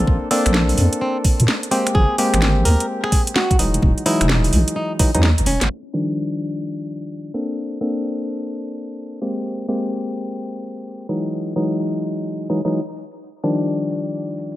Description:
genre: UK garage, two-step garage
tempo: 128 BPM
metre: 4/4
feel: swing 64% on 16ths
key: Eb major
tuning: A4 = 440 Hz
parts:
  - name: percussive organ stab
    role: stabs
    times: 0.0-14.6 s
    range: Eb3 to A4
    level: -22 LUFS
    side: left 1 dB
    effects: chorus, dub echo
  - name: deep soft wobble bass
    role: bass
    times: 0.0-5.7 s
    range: E1 to Bb2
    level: -17 LUFS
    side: equal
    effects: chorus
  - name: electronic kick drum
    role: drums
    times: 0.1-5.1 s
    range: none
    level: -17 LUFS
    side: equal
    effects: studio reverb
  - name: flamenco guitar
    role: melody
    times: 0.3-5.6 s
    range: C4 to Bb4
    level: -25 LUFS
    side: equal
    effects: ping-pong delay
  - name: garage drum kit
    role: drums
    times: 0.3-14.6 s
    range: finger snaps, hi-hat, snare drum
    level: -22 LUFS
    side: equal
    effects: low-pass filter on hats, studio reverb, low-pass filter on snare
room: little or no reverb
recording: low-pass filter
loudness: -17 LUFS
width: side -15 dB against mid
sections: 0.0-5.7 A section; 5.7-14.6 B section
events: drum fill 5.2-5.7; filter sweep on synth stab 5.7-14.6; filter sweep 5.7-14.6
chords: 0.0 Bbmaj9; 2.0 Abmaj9; 3.6 Emaj9; 5.7 Ebmaj9; 7.3 Bbmaj9; 9.5 Abmaj9; 11.1 Emaj9; 13.2 Ebmaj9

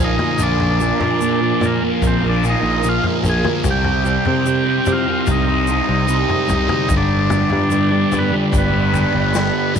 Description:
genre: psychedelic rock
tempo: 74 BPM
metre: 4/4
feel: straight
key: C minor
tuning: A4 = 440 Hz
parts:
  - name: combo organ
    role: melody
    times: 0.0-9.7 s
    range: Bb3 to Ab4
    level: -20 LUFS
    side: equal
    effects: slapback echo
  - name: ensemble organ-string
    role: sustained chords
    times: 0.0-9.8 s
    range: Bb4 to B5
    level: -28 LUFS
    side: right 13 dB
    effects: phaser, ensemble chorus
  - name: thick fuzz guitar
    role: riff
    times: 0.0-9.8 s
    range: G2 to C4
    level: -19 LUFS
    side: equal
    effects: distortion, phaser
  - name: picked electric bass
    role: bass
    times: 0.0-9.8 s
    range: G1 to C3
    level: -20 LUFS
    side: equal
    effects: none
  - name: vintage drum kit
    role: drums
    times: 0.2-9.8 s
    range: kick drum, snare drum, toms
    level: -23 LUFS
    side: left 3 dB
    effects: none
  - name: tube shaker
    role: percussion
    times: 0.4-9.8 s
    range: none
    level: -35 LUFS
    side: left 16 dB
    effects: none
room: light reverb, small room reverb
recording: 1960s-style stereo with parts hard left and right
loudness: -14 LUFS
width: side -7 dB against mid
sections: 0.0-9.8 A section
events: drum fill 9.3-9.8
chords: 0.0 Bb5; 3.7 Cm7; 6.9 G

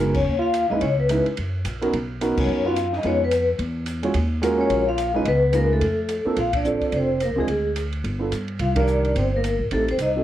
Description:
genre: jazz, small-group swing and bop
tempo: 216 BPM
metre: 4/4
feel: swing 60% on 8ths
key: Bb major from 6.4 s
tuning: A4 = 439 Hz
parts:
  - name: dark baby grand piano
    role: accompaniment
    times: 0.0-10.2 s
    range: Eb3 to C#5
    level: -24 LUFS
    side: right 3 dB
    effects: none
  - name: upright bass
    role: bass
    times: 0.0-10.2 s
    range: F1 to G2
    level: -25 LUFS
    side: equal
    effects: none
  - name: dark trombone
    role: second line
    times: 0.1-10.2 s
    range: Ab3 to F4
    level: -28 LUFS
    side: right 2 dB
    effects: none
  - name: open jazz drum kit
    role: drums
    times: 0.1-10.1 s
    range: crash cymbal, hi-hat, kick drum, ride cymbal, snare drum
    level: -32 LUFS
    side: right 1 dB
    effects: none
  - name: vibraphone with medium mallets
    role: melody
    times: 0.2-10.2 s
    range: Ab4 to E#5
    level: -23 LUFS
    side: left 3 dB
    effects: none
room: light reverb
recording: worn, warbling old tape, cassette tape, warbly pitch drift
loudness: -20 LUFS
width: side -12 dB against mid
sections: 0.0-6.4 A section; 6.4-10.2 B section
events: band accent 0.1, 2.3, 6.5, 8.7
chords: 0.0 G#m9; 0.8 C#m7; 1.4 F#6; 1.9 Bmaj9; 3.0 Fm7b5; 3.6 E; 4.1 D#m11; 5.3 C#9; 5.8 F; 6.4 Bbmaj9; 7.5 N.C.; 8.0 G7; 8.6 Cm7; 9.7 Am7b5

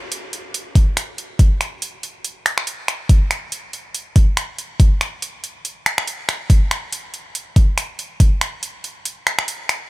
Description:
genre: dubstep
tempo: 141 BPM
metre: 4/4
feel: swing 56% on 16ths, half-time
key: none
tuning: none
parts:
  - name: garage drum kit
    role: drums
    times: 0.1-9.8 s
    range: finger snaps, hi-hat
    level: -22 LUFS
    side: equal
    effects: overdrive, studio ambience
  - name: electronic kick drum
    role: drums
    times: 0.8-8.3 s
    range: none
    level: -12 LUFS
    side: equal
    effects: overdrive, studio ambience
room: little or no reverb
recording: none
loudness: -17 LUFS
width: side -19 dB against mid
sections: 0.0-9.9 A section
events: none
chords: none

